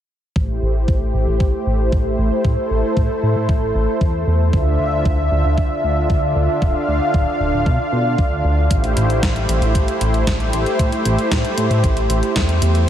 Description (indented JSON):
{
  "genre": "synthwave",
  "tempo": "115 BPM",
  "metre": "4/4",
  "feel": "straight",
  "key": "A minor",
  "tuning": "A4 = 439 Hz",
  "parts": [
    { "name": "lush unison pad", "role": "sustained chords", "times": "0.4-12.8 s", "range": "D3 to F5", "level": "-19 LUFS", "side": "equal", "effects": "chorus, sidechain pumping" },
    { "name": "chorused synth bass", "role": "bass", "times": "0.4-12.9 s", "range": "D1 to B2", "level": "-19 LUFS", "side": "equal", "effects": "tube saturation" },
    { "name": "electronic kick drum", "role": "drums", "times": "0.4-12.5 s", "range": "none", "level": "-18 LUFS", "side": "equal", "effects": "none" },
    { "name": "gated 80s digital drum machine", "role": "drums", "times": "8.7-12.9 s", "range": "hi-hat, snare drum", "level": "-25 LUFS", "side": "equal", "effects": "gated reverb, gated reverb snare" }
  ],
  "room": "moderate huge ambient reverb, RT60 7.5 s",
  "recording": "dreamy mix soaked in reverb",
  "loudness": "-15 LUFS",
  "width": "side -10 dB against mid",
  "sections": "0.4-8.7 A section; 8.7-12.9 B section",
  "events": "filter sweep on analog synth bass 0.4-8.7; filter sweep on analog synth pad 0.4-8.7",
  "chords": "0.4 Am7; 4.5 Dmadd9; 8.7 Am7"
}